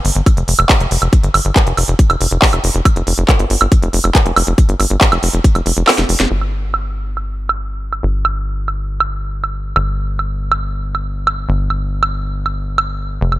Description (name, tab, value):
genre	psychedelic trance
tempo	139 BPM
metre	4/4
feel	straight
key	unclear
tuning	A4 = 440 Hz
part	tight sequencer bass	bass	0.0-13.4 s	F1 to G1	-17 LUFS	equal	none
part	techno drum kit	drums	0.0-13.4 s	crash cymbal, handclaps, hi-hat, snare drum, woodblock	-16 LUFS	right 2 dB	low-pass filter on hats, low-pass filter on snare, low-pass filter on perc, low-pass filter on cymbals, low-pass filter on room
part	electronic kick drum	drums	0.3-5.5 s	none	-11 LUFS	equal	none
room	little or no reverb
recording	none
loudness	-13 LUFS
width	side -16 dB against mid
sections	0.0-6.3 A section; 6.3-13.4 B section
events	kick drops out 5.9-6.3; drum fill 5.9-6.3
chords	none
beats	0.26 0.69 | 1.13 1.56 1.99 2.42 | 2.85 3.29 3.72 4.15 | 4.58 5.01 5.44 5.88 | 6.31 6.74 7.17 7.60 | 8.03 8.46 8.90 9.33 | 9.76 10.19 10.62 11.05 | 11.49 11.92 12.35 12.78 | 13.21